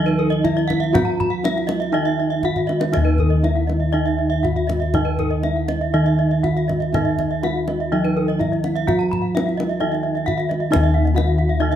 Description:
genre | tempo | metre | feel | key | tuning
Balinese gamelan | 120-134 BPM | 4/4 | straight | Eb pelog | A4 = 440 Hz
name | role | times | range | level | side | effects
gamelan-type bronze metallophone | melody | 0.0-11.8 s | Eb4 to Gb4-50c | -24 LUFS | equal | none
gamelan-type bronze metallophone | accompaniment | 0.0-11.8 s | Eb3 to Gb3-50c | -24 LUFS | right 5 dB | none
gamelan-type bronze metallophone | arpeggios | 0.0-11.7 s | Bb4-45c to Cb6-40c | -26 LUFS | left 6 dB | none
gamelan-type bossed gongs | bass | 0.0-11.8 s | Eb2 to Gb4-50c | -22 LUFS | left 1 dB | none
gamelan-type bronze metallophone | arpeggios | 0.1-11.8 s | Cb5-40c to Bb5-45c | -26 LUFS | right 5 dB | none
kendang | percussion | 0.1-11.8 s | none | -26 LUFS | left 1 dB | none
room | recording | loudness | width
light reverb | close, detailed microphones | -17 LUFS | side -10 dB against mid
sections
0.0-10.7 A section; 10.7-11.8 B section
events
drum fill 2.6-2.9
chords
none

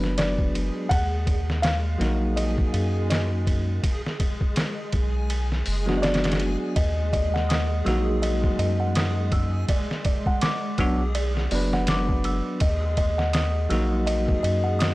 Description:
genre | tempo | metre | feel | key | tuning
trip hop | 82 BPM | 4/4 | swing 58% on 16ths | Eb harmonic minor | A4 = 440 Hz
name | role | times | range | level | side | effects
bell-like tine electric piano | accompaniment | 0.0-14.9 s | F#3 to B4 | -28 LUFS | equal | harmonic tremolo, vintage 12-bit sampler grit, tape echo
soft dub sub bass | bass | 0.0-14.9 s | F#1 to Gb2 | -25 LUFS | equal | none
trip hop sampler-style drum kit | drums | 0.0-14.9 s | hi-hat, kick drum, ride cymbal, snare drum | -26 LUFS | equal | none
backwards swelling texture | texture | 0.0-14.9 s | Ab3 to Ab4 | -35 LUFS | right 1 dB | built-in reverb
felt-muted upright piano | melody | 0.2-6.7 s | D5 to Gb5 | -31 LUFS | equal | tape echo
music box | arpeggios | 6.8-14.9 s | D5 to Fb6 | -29 LUFS | equal | tape echo
room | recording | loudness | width
digital ambience | dry, gritty hardware recording | -21 LUFS | side -19 dB against mid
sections
0.0-14.9 A section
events
none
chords
0.0 Bm; 0.9 Ebm; 3.8 Bm; 6.8 Ebm; 9.7 Bm; 12.6 Ebm

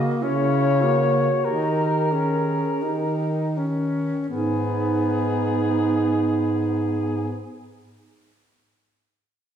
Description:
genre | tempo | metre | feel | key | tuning
classical, lyrical piece for single-reed quartet | 39-52 BPM | 4/4 | rubato | G# minor | A4 = 440 Hz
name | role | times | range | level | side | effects
warm alto saxophone | second line | 0.0-7.3 s | D#4 to G#4 | -26 LUFS | right 6 dB | none
clear tenor saxophone | accompaniment | 0.0-7.3 s | A#3 to D#4 | -26 LUFS | equal | none
clear bass clarinet | bass | 0.0-7.3 s | G#2 to D#3 | -25 LUFS | right 1 dB | none
clear soprano saxophone | melody | 0.2-7.3 s | G#4 to C#5 | -26 LUFS | left 5 dB | none
room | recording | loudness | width
wet recital hall reverb, RT60 1.6 s | heard from further back in the room | -20 LUFS | side -8 dB against mid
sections
0.0-4.3 A section; 4.3-9.6 B section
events
slowing down 0.0-4.3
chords
0.0 C#m6; 1.4 D#5; 4.3 G#m

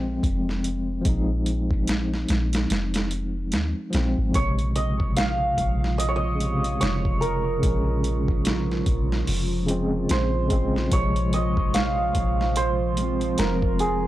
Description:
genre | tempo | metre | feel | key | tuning
trip hop | 73 BPM | 4/4 | swing 59% on 16ths | Bb minor | A4 = 440 Hz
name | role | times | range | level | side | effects
tine electric piano | accompaniment | 0.0-14.1 s | C3 to Eb4 | -28 LUFS | equal | medium tremolo, tape echo
soft 808-style bass | bass | 0.0-14.1 s | F1 to Eb2 | -26 LUFS | equal | tube saturation
dusty soul sampler-style drum kit | drums | 0.2-14.0 s | hi-hat, kick drum, snare drum | -26 LUFS | equal | overdrive
warbly tape-like pad | sustained chords | 4.9-14.1 s | F3 to F4 | -31 LUFS | right 1 dB | chorus, built-in reverb
santur | melody | 4.4-14.1 s | Ab4 to F5 | -27 LUFS | right 2 dB | dub echo
room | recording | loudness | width
digital ambience | dry, gritty hardware recording | -21 LUFS | side -14 dB against mid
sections
0.0-14.1 A section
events
none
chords
0.0 Fm; 4.3 Bbm7; 10.9 Fm

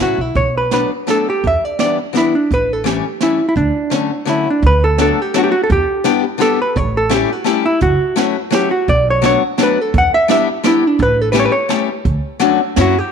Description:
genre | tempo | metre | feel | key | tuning
musette waltz | 169 BPM | 3/4 | straight | D major | A4 = 440 Hz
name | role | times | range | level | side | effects
hollow-body jazz guitar | melody | 0.0-13.1 s | D4 to F#5 | -15 LUFS | right 1 dB | none
picked acoustic archtop guitar | accompaniment | 0.0-13.0 s | D3 to G4 | -18 LUFS | left 10 dB | none
upright bass | bass | 0.0-13.0 s | F#1 to F#2 | -18 LUFS | right 1 dB | none
jazz brush drum kit | drums | 0.3-12.8 s | hi-hat, kick drum, snare drum | -22 LUFS | right 6 dB | none
room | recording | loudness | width
moderate plate reverb, RT60 1.7 s, small room ambience | 1960s-style stereo with parts hard left and right | -13 LUFS | side -7 dB against mid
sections
0.0-4.6 A section; 4.6-13.1 A section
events
none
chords
0.4 Bm7; 1.4 Em7; 2.5 A7; 3.6 Dmaj7; 4.6 D6; 5.7 Em7; 6.8 A7; 7.8 F#m7; 8.9 Bm7; 9.9 Em7; 11.0 A7; 12.1 Dmaj7; 12.8 F#7

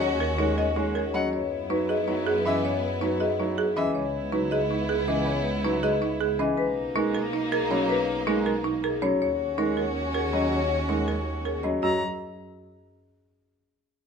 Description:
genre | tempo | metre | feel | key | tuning
classical, minimalist pattern music | 320 BPM (eighths) | 7/8 | straight | F# mixolydian | A4 = 443 Hz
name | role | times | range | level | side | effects
marimba with medium hard mallets | melody | 0.0-12.0 s | G#4 to D#5 | -29 LUFS | left 8 dB | none
clear concert grand piano | accompaniment | 0.0-12.0 s | E3 to G#3 | -32 LUFS | right 2 dB | none
rich studio violin section | sustained chords | 0.0-11.6 s | A#3 to F#4 | -31 LUFS | left 2 dB | none
folk marimba with medium hard mallets | arpeggios | 0.0-12.0 s | C#4 to A#4 | -28 LUFS | right 6 dB | none
warm studio double bass section | bass | 0.0-12.0 s | B1 to F#2 | -33 LUFS | right 2 dB | none
warm violin | arpeggios | 1.1-3.9, 11.8-12.0 s | E5 to A#5 | -33 LUFS | left 2 dB | none
room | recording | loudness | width
moderate large studio reverb, RT60 1.4 s | minimal, uncompressed stereo recording | -23 LUFS | side -6 dB against mid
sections
0.0-11.8 A section; 11.8-14.1 B section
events
none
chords
0.0 D#m7; 1.3 F#9sus4; 4.0 C#m9; 6.6 Bmaj9; 9.2 D#m7; 11.8 F#

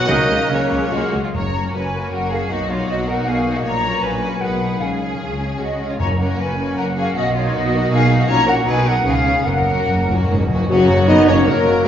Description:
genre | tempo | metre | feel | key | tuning
classical, dramatic, fast romantic movement for symphony orchestra | 140-162 BPM | 3/4 | rubato | F# major | A4 = 440 Hz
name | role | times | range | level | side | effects
clear chamber violin section | melody | 0.0-11.9 s | C#4 to D#5 | -28 LUFS | left 1 dB | none
mellow flute section | second line | 0.0-11.8 s | C#5 to F#6 | -22 LUFS | left 1 dB | none
warm clarinet | second line | 0.0-1.1, 10.7-11.9 s | C#4 to D#5 | -26 LUFS | equal | none
warm oboe | second line | 0.0-1.1, 10.7-11.9 s | C#4 to C#5 | -28 LUFS | right 2 dB | none
warm symphonic violin section | second line | 0.0-11.8 s | G#3 to D#5 | -25 LUFS | left 2 dB | none
mellow bassoon | accompaniment | 0.0-1.1, 10.7-11.9 s | F#3 to A#3 | -26 LUFS | right 1 dB | none
concert harp | arpeggios | 0.0-11.9 s | F#2 to F#5 | -26 LUFS | left 3 dB | none
rich symphonic viola section | accompaniment | 0.1-11.9 s | C#3 to D#4 | -26 LUFS | right 1 dB | none
dark French horn section | sustained chords | 0.1-1.1, 10.7-11.9 s | F#3 to F#4 | -16 LUFS | left 1 dB | none
rich symphonic cello section | bass | 0.1-11.9 s | F#2 to C#3 | -24 LUFS | right 2 dB | none
warm symphonic double bass section | bass | 0.1-11.9 s | F#1 to C#2 | -25 LUFS | right 1 dB | none
timpani | percussion | 0.1-1.9, 4.8-6.5, 9.5-10.6 s | F#2 to C#3 | -24 LUFS | left 1 dB | none
mellow tuba | bass | 10.7-11.9 s | F#1 | -24 LUFS | right 2 dB | none
room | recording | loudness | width
wet recital hall reverb, RT60 1.4 s | recorded in a church or concert hall, nothing above 7.6 kHz | -15 LUFS | side -9 dB against mid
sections
0.0-1.3 A section; 1.3-10.7 B section; 10.7-11.9 C section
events
timpani fill 9.5-10.7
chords
0.1 F#/C#; 0.9 C#; 1.3 F#; 2.5 Bmaj7; 3.7 F#/A#; 4.4 G#m7/B; 4.8 C#; 6.0 F#; 7.2 Bmaj7; 8.3 F#/A#; 8.7 G#m7/B; 9.1 C#7; 9.5 F#

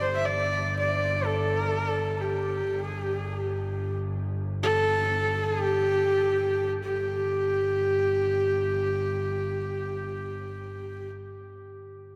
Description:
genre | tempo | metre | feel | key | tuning
mongolian traditional, Mongolian folk | free time | none | none | unclear | A4 = 440 Hz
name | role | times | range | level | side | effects
bright horsehead fiddle | melody | 0.0-11.1 s | G4 to E5 | -29 LUFS | equal | none
clear double bass | drone | 0.0-11.1 s | G1 | -34 LUFS | equal | none
room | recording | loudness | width
wet cathedral reverb, RT60 6.3 s | in a vast, echoing space | -27 LUFS | mono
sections
0.0-6.8 A section; 6.8-11.8 B section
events
slowing down 2.7-6.8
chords
none

